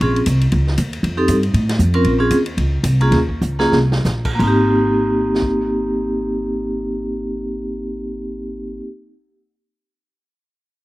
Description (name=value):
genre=jazz, small-group swing and bop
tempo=163-234 BPM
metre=4/4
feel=swing 59% on 8ths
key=Ab major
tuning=A4 = 440 Hz
part: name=vibraphone with medium hard mallets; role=accompaniment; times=0.0-8.9 s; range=Bb3 to Bb4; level=-18 LUFS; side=equal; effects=none
part: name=upright bass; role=bass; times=0.0-8.8 s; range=Ab1 to A2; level=-19 LUFS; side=equal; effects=none
part: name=swinging big-band drum kit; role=drums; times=0.0-5.5 s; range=crash cymbal, hi-hat, kick drum, ride cymbal, snare drum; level=-27 LUFS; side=equal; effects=none
room=little or no reverb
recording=recorded outdoors, with no room sound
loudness=-15 LUFS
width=side -18 dB against mid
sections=0.0-4.4 A section; 4.4-7.3 B section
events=slowing down 2.1-4.4; drum fill 3.4-4.0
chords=0.0 Bbm9; 1.0 F; 2.1 Bbm9; 4.4 Abmaj9